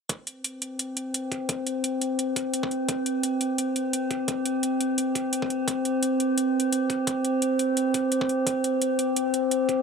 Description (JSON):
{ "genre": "half-time drum and bass", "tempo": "172 BPM", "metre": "4/4", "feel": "swing 55% on 16ths, half-time", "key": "unclear", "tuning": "A4 = 440 Hz", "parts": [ { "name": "electronic hi-hat", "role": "drums", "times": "0.1-9.8 s", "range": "none", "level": "-29 LUFS", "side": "equal", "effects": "none" }, { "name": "electronic kick drum", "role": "drums", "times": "0.1-9.8 s", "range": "none", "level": "-34 LUFS", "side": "equal", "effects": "high-pass filter on kick, high-pass filter on room" }, { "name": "metallic inharmonic drone", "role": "texture", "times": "0.5-9.8 s", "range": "C4", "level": "-24 LUFS", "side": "equal", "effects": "chorus, built-in reverb" } ], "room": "wet cathedral reverb, RT60 5.0 s", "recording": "dreamy mix soaked in reverb", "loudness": "-24 LUFS", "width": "side -5 dB against mid", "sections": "0.1-9.8 A section", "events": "none", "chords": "none" }